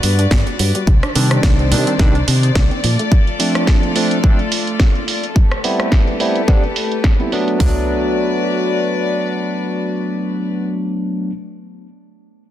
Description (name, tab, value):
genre	nu-disco, nu disco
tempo	107 BPM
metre	4/4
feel	swing 55% on 16ths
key	unclear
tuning	A4 = 439 Hz
part	rich chamber string section	sustained chords	0.0-10.6 s	Eb3 to D5	-23 LUFS	left 2 dB	vintage 12-bit sampler grit, sidechain pumping
part	analog pluck	arpeggios	0.0-3.1 s	F3 to Eb4	-27 LUFS	right 1 dB	chorus, sidechain pumping, tape echo
part	fingered electric bass with an envelope filter	bass	0.0-3.0 s	G1 to C3	-16 LUFS	equal	tube saturation
part	house drum kit	drums	0.0-7.6 s	hi-hat, rim click, snare drum	-21 LUFS	right 2 dB	low-pass filter on hats, low-pass filter on perc, low-pass filter on snare, low-pass filter on room
part	house drum kit	drums	0.3-7.7 s	hi-hat, kick drum, toms	-13 LUFS	equal	none
part	barky tine electric piano	accompaniment	1.1-11.3 s	Eb3 to E4	-20 LUFS	equal	overdrive, phaser, sidechain pumping, low-pass filter, ping-pong delay
room	light reverb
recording	dense, heavily limited modern master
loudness	-14 LUFS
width	side -12 dB against mid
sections	0.0-7.6 A section; 7.6-9.8 B section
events	filter sweep on tine electric piano 0.0-7.6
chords	0.0 Gmaj7; 0.9 Cmadd9; 2.8 Bbmaj7 (rootless); 5.4 Am9; 7.6 Bm7/F#